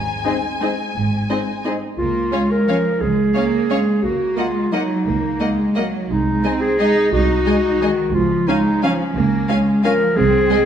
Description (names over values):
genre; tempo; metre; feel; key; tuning
classical, orchestral ballroom waltz; 176 BPM; 3/4; uneven beats, rubato; Db major; A4 = 439 Hz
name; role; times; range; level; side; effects
warm symphonic violin section; melody; 0.0-10.6 s; F5 to Ab5; -29 LUFS; left 5 dB; none
rich studio cello section; bass; 0.0-10.7 s; Ab2 to Eb4; -21 LUFS; right 1 dB; none
rich symphonic double bass section; bass; 0.0-10.4 s; Ab1 to Db2; -24 LUFS; right 3 dB; none
mellow French horn section; sustained chords; 0.2-1.8 s; Ab3 to C4; -28 LUFS; left 5 dB; none
rich studio violin section; second line; 0.3-10.6 s; Ab4 to F5; -29 LUFS; left 2 dB; none
rich symphonic viola section; accompaniment; 0.3-10.6 s; Ab3 to Eb4; -25 LUFS; equal; none
warm clarinet; second line; 2.0-10.7 s; Db4 to Bb4; -19 LUFS; equal; none
room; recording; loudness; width
wet scoring stage reverb, RT60 1.6 s; minimal, uncompressed stereo recording; -16 LUFS; side -9 dB against mid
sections
0.0-2.0 A section; 2.0-10.7 B section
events
none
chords
0.0 Ab; 2.0 Db; 4.0 Ebm7/Db; 6.1 Ab/C; 8.1 Db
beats
0.26 0.62 | 0.95 1.30 1.65 | 1.99 2.33 2.68 | 3.02 3.35 3.70 | 4.04 4.38 4.74 | 5.07 5.41 5.76 | 6.10 6.44 6.79 | 7.12 7.46 7.82 | 8.15 8.48 8.83 | 9.16 9.49 9.84 | 10.17 10.50